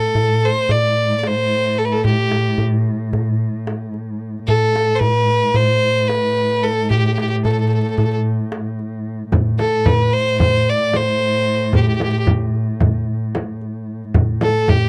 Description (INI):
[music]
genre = Turkish makam ensemble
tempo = 223 BPM (eighths)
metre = 9/8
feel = straight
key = A makam huseyni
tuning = A4 = 440 Hz
[part]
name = bright violin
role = melody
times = 0.0-14.9 s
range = G4 to D5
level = -20 LUFS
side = equal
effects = none
[part]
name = dark cello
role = drone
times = 0.0-14.9 s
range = A2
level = -26 LUFS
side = equal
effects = none
[part]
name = darbuka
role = percussion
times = 0.1-14.8 s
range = none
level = -22 LUFS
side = equal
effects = none
[part]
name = frame drum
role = percussion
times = 9.3-14.8 s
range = none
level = -21 LUFS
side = equal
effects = none
[sound]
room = light reverb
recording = dry, close 1970s-style studio recording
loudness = -18 LUFS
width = mono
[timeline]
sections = 0.0-14.9 A section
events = none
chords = none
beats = 0.16 0.43 0.70 0.97 1.24 1.51 1.78 | 2.05 2.32 2.59 2.86 3.13 3.40 3.67 3.94 4.21 | 4.48 4.75 5.02 5.29 5.56 5.83 6.10 6.37 6.63 | 6.90 7.17 7.44 7.71 7.98 8.25 8.52 8.79 9.05 | 9.32 9.59 9.86 10.13 10.40 10.66 10.93 11.20 11.47 | 11.74 12.01 12.27 12.54 12.81 13.08 13.35 13.61 13.88 | 14.15 14.42 14.69